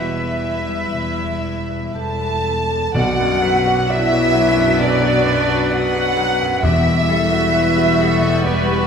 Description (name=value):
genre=cinematic, emotional film score for orchestra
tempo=57-66 BPM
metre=4/4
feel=rubato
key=E minor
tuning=A4 = 442 Hz
part: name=clear studio violin section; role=melody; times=0.0-8.9 s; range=D4 to E5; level=-30 LUFS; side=left 1 dB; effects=none
part: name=bright clarinet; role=second line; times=0.0-8.9 s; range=G4 to D5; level=-27 LUFS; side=equal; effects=none
part: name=mellow small flute group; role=second line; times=0.0-8.9 s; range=B4 to A5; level=-24 LUFS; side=right 3 dB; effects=none
part: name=warm chamber violin section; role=second line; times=0.0-8.9 s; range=B4 to A5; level=-21 LUFS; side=equal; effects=none
part: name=clear concert grand piano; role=accompaniment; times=0.0-8.9 s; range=B1 to D5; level=-26 LUFS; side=left 2 dB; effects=none
part: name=warm studio viola section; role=accompaniment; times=0.0-8.9 s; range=F#3 to E4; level=-27 LUFS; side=equal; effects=none
part: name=mellow French horn section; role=sustained chords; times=0.0-8.9 s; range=G3 to A4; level=-22 LUFS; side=left 4 dB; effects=none
part: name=concert harp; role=arpeggios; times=0.0-8.9 s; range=E2 to D5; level=-27 LUFS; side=left 5 dB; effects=none
part: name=warm studio cello section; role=bass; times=0.0-8.9 s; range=E2 to B2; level=-27 LUFS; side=right 2 dB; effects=none
part: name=warm studio double bass section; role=bass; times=0.0-8.9 s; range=E1 to B1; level=-25 LUFS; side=right 4 dB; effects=none
part: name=timpani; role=percussion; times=2.9-7.9 s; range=E2 to B2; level=-23 LUFS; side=equal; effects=none
room=wet scoring stage reverb, RT60 1.9 s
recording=none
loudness=-15 LUFS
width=side -6 dB against mid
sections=0.0-2.9 A section; 2.9-8.9 B section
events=none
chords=0.0 Em; 2.9 Bm; 6.6 Emadd9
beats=0.93 1.96 | 2.94 3.89 4.81 5.73 | 6.63 7.54 8.45